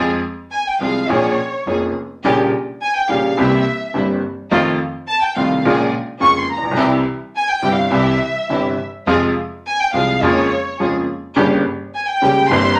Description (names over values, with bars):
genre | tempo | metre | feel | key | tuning
tango | 105 BPM | 4/4 | rubato | F harmonic minor | A4 = 440 Hz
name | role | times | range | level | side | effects
bright baby grand piano | accompaniment | 0.0-12.7 s | F1 to Ab4 | -19 LUFS | equal | none
clear symphonic string section | stabs | 0.0-12.7 s | A3 to Ab4 | -28 LUFS | equal | none
upright bass | bass | 0.0-12.7 s | F1 to F2 | -31 LUFS | equal | none
warm studio violin section | second line | 0.5-12.8 s | Db5 to Db6 | -20 LUFS | equal | none
room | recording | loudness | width
wet studio reverb, RT60 0.6 s | none | -18 LUFS | mono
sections
0.0-12.8 A section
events
violin section solo 0.0-12.8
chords
0.0 Fm; 1.1 Bbm7; 2.2 Gdim/Bb; 3.4 C7; 4.5 F7; 5.7 Bbm7; 6.8 C; 9.1 Fm; 10.2 Bbm7/F; 11.4 Gdim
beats
0.52 1.10 1.67 | 2.25 2.82 3.38 3.95 | 4.52 5.09 5.65 6.22 | 6.79 7.35 7.92 8.50 | 9.08 9.65 10.23 10.80 | 11.37 11.94 12.50